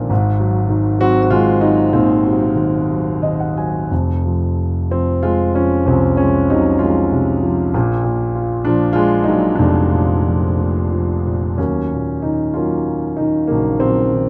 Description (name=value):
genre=classical, lyrical solo piano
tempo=59-69 BPM (dotted quarters)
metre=6/8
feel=rubato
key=Eb dorian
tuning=A4 = 440 Hz
part: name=warm concert grand piano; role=solo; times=0.0-14.3 s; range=Eb1 to Ab5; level=-16 LUFS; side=equal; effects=none
room=light reverb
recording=close, detailed microphones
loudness=-16 LUFS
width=mono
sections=0.0-11.6 A section; 11.6-14.3 B section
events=grand piano fill 2.9-3.9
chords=0.1 Ab7; 3.9 Fm; 7.7 Bb; 11.6 Ebm7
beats=| 0.10 1.00 | 1.94 2.91 | 3.91 4.90 | 5.86 6.80 | 7.74 8.66 | 9.59 10.57 | 11.58 12.56 | 13.50